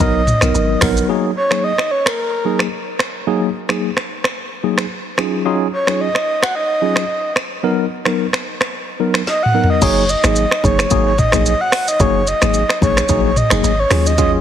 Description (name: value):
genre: afrobeats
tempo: 110 BPM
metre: 4/4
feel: swing 55% on 16ths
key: F# major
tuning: A4 = 440 Hz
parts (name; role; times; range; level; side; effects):
- breathy flute-like synth lead; melody; 0.0-14.3 s; A#4 to F#5; -18 LUFS; equal; chorus, ping-pong delay
- tine electric piano; accompaniment; 0.0-14.4 s; F#3 to A#4; -19 LUFS; left 1 dB; medium stereo tremolo
- deep log drum bass; bass; 0.0-1.0, 9.8-14.4 s; F#1 to D#2; -19 LUFS; equal; none
- afro-pop drum kit; drums; 0.0-14.3 s; crash cymbal, finger snaps, hi-hat, kick drum, rim click, shaker, snare drum, toms; -19 LUFS; equal; none
room: light reverb, digital ambience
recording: heavily compressed radio sound, multiband compression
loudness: -14 LUFS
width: side -9 dB against mid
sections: 0.0-1.1 A section; 1.1-9.8 B section; 9.8-14.4 A section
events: drum fill 9.3-9.8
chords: 0.0 Bmaj7; 1.1 F#69; 5.2 D#m11; 7.6 Bmaj7; 9.8 F#69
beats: 0.00 0.55 | 1.09 1.64 2.18 2.73 | 3.27 3.82 4.36 4.91 | 5.45 6.00 6.54 7.09 | 7.64 8.18 8.73 9.27 | 9.82 10.36 10.91 11.45 | 12.00 12.54 13.09 13.64 | 14.18